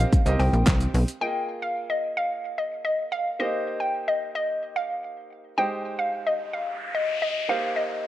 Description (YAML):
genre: dance-pop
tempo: 110 BPM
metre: 4/4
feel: straight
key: C minor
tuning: A4 = 441 Hz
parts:
  - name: hollow square pluck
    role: melody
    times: 0.0-8.0 s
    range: Eb5 to G5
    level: -26 LUFS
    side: left 1 dB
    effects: chorus, sidechain pumping
  - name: bright concert grand piano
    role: accompaniment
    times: 0.0-8.1 s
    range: Ab3 to Eb5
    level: -33 LUFS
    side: right 2 dB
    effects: sidechain pumping
  - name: plucky analog bass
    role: bass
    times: 0.0-1.0 s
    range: Bb1 to C2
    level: -21 LUFS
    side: equal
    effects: sidechain pumping
  - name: pop drum kit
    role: drums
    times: 0.1-1.2 s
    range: handclaps, hi-hat, kick drum, shaker, snare drum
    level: -21 LUFS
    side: equal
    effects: none
  - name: noise sweep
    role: sound effects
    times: 6.4-8.1 s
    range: none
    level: -33 LUFS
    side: left 4 dB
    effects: none
room: light reverb, digital ambience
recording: worn, warbling old tape, cassette tape, warbly pitch drift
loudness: -24 LUFS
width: side -13 dB against mid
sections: 0.0-1.2 A section; 1.2-8.1 B section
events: drop 0.0-1.2; noise sweep 6.4-8.1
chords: 0.0 Cm7; 1.2 Bb7sus4; 3.4 Cm7; 5.6 Abmaj7; 7.5 Cm7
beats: 0.12 0.67 | 1.22 1.76 2.31 2.85 | 3.40 3.94 4.49 5.03 | 5.58 6.12 6.67 7.21 | 7.76